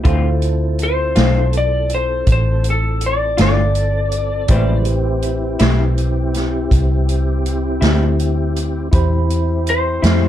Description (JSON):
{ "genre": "slow blues", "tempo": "54 BPM (dotted quarters)", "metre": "12/8", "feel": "straight", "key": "A minor", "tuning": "A4 = 440 Hz", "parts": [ { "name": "electric guitar through a small old amp", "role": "accompaniment", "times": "0.0-10.3 s", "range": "A2 to F4", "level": "-23 LUFS", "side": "left 5 dB", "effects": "tremolo" }, { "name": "tine electric piano", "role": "accompaniment", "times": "0.0-10.3 s", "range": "E4 to B5", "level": "-26 LUFS", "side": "right 2 dB", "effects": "medium stereo tremolo" }, { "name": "mellow tonewheel organ", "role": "sustained chords", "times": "0.0-10.3 s", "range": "C#3 to A4", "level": "-25 LUFS", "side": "left 2 dB", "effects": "slow rotary speaker, chorus vibrato" }, { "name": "vintage muted fingered electric bass", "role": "bass", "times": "0.0-10.3 s", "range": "G1 to F2", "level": "-17 LUFS", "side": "equal", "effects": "none" }, { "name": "swinging big-band drum kit", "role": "drums", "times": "0.1-10.2 s", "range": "hi-hat, kick drum, snare drum", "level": "-19 LUFS", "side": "equal", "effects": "none" }, { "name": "electric slide guitar", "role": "melody", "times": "0.8-10.3 s", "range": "A4 to D5", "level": "-19 LUFS", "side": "left 2 dB", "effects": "none" } ], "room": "light reverb", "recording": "dark, warm production", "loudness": "-14 LUFS", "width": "side -11 dB against mid", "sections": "0.0-10.3 A section", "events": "none", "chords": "0.1 Dm7; 4.5 Am7" }